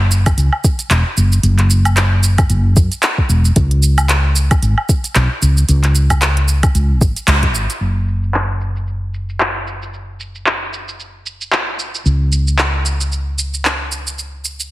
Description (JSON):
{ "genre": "organic downtempo", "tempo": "113 BPM", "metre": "4/4", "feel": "swing 57% on 16ths", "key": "unclear", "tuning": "A4 = 441 Hz", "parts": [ { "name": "woody fretless electric bass", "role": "bass", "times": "0.0-14.7 s", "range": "E1 to F#2", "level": "-14 LUFS", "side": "equal", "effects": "wide subtle chorus, sidechain pumping" }, { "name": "organic electronic drum kit", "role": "drums", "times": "0.1-14.7 s", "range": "handclaps, hi-hat, shaker, woodblock", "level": "-18 LUFS", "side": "equal", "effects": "low-pass filter on hats, low-pass filter on perc, low-pass filter on snare" }, { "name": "electronic kick drum", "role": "drums", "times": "0.3-7.5 s", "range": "none", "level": "-14 LUFS", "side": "equal", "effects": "none" } ], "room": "light reverb", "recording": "heavily compressed radio sound, multiband compression", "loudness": "-13 LUFS", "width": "side -17 dB against mid", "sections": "0.0-7.8 A section; 7.8-14.7 B section", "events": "band accent 7.3; filter sweep on drum 7.8-14.7", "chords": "none" }